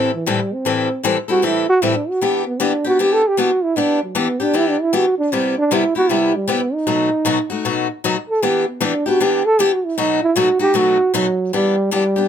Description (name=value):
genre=jazz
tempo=155 BPM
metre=4/4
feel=swing 63% on 8ths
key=E minor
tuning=A4 = 440 Hz
part: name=breathy trombone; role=melody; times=0.0-12.3 s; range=E3 to A4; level=-16 LUFS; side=right 2 dB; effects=none
part: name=picked steel-string acoustic guitar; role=accompaniment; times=0.0-12.3 s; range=A2 to A4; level=-19 LUFS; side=left 5 dB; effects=none
room=light reverb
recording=close, detailed microphones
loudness=-15 LUFS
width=side -9 dB against mid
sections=0.0-11.5 A section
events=trombone solo 0.0-11.5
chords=0.0 Am7; 2.2 Em7; 5.3 Cmaj7; 6.9 B7; 8.4 Em7; 10.0 B7; 11.5 Em7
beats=0.28 | 0.67 1.05 1.44 1.83 | 2.22 2.61 2.99 3.38 | 3.77 4.16 4.55 4.93 | 5.32 5.71 6.10 6.49 | 6.88 7.26 7.65 8.04 | 8.43 8.81 9.20 9.59 | 9.98 10.36 10.75 11.14 | 11.53 11.92